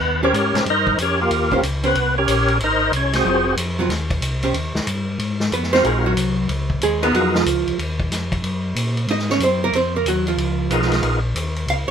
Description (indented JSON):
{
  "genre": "soul jazz organ trio",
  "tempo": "185 BPM",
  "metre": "4/4",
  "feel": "swing 64% on 8ths",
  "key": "Ab mixolydian",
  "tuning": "A4 = 440 Hz",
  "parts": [
    { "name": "percussive tonewheel organ", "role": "melody", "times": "0.0-3.6, 5.7-7.4, 10.7-11.2 s", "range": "Bb3 to Eb5", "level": "-18 LUFS", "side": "equal", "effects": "slow rotary speaker, overdrive, chorus vibrato" },
    { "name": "mellow tonewheel organ", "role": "bass", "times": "0.0-11.9 s", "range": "F1 to Bb2", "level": "-23 LUFS", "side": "left 1 dB", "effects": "chorus vibrato, slow rotary speaker" },
    { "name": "archtop guitar, miked and amplified", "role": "accompaniment", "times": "0.2-11.9 s", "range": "Eb3 to F5", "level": "-20 LUFS", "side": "right 3 dB", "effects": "none" },
    { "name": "vintage drum kit", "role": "drums", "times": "0.3-11.8 s", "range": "hi-hat, kick drum, ride cymbal, snare drum", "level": "-25 LUFS", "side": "left 1 dB", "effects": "none" }
  ],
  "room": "light reverb",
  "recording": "minimal, uncompressed stereo recording",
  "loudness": "-17 LUFS",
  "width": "side -8 dB against mid",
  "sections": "0.0-5.2 A section; 5.2-11.9 A section",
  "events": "tonewheel organ solo 0.0-5.2; hollow-body jazz guitar solo 5.2-11.9",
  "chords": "0.0 Eb13; 2.6 Ab13; 4.5 Eb; 5.2 Ab13; 6.5 Db13; 7.8 Ab13; 10.4 Db13"
}